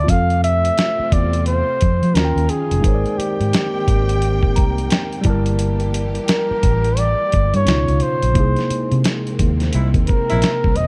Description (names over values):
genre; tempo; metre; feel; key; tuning
R&B, neo-soul; 87 BPM; 4/4; swing 63% on 16ths; unclear; A4 = 441 Hz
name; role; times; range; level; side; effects
breathy flugelhorn; melody; 0.0-10.9 s; G4 to F5; -23 LUFS; equal; none
tine electric piano; accompaniment; 0.0-10.9 s; B2 to Bb5; -27 LUFS; equal; phaser
vintage muted fingered electric bass; bass; 0.0-10.9 s; E1 to F3; -21 LUFS; equal; none
warm studio string section; sustained chords; 0.1-10.9 s; B2 to G5; -32 LUFS; equal; none
dusty soul sampler-style drum kit; drums; 0.1-10.9 s; hi-hat, kick drum, snare drum; -21 LUFS; equal; none
warm horn section; stabs; 9.7-10.5 s; Bb2 to E4; -30 LUFS; equal; none
room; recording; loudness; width
studio ambience; dark, warm production; -18 LUFS; mono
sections
0.1-10.9 A section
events
tine electric piano fill 4.2-5.6; band accent 8.4-10.9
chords
0.1 Fmaj7; 2.1 Eb9; 2.8 Abmaj9#11; 5.3 Gm69; 7.7 C#9; 8.4 C7alt